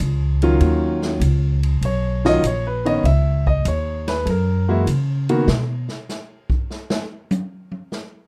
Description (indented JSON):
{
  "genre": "jazz piano trio",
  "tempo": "98 BPM",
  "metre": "4/4",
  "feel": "swing 69% on 8ths",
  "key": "F# major",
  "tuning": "A4 = 440 Hz",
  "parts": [
    { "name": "upright bass", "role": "bass", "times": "0.0-5.9 s", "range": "A#1 to C#3", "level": "-21 LUFS", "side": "equal", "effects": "none" },
    { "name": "swinging big-band drum kit", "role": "drums", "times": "0.0-8.1 s", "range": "hi-hat, kick drum, ride cymbal, snare drum, toms", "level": "-29 LUFS", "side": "equal", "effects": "none" },
    { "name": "clear grand piano", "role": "melody", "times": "0.4-5.5 s", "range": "D#3 to E5", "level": "-23 LUFS", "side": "equal", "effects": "none" }
  ],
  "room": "little or no reverb",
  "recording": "rough home demo mix",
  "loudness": "-20 LUFS",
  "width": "mono",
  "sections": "0.0-8.3 A section",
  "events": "grand piano solo 0.0-8.3; drum solo 5.5-8.3",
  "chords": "0.0 N.C.; 0.6 D#m9; 3.0 C#sus2; 4.3 F#7; 5.5 N.C.",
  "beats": "| 0.60 1.21 1.82 2.43 | 3.04 3.65 4.26 4.87 | 5.48 6.09 6.70 7.31 | 7.92"
}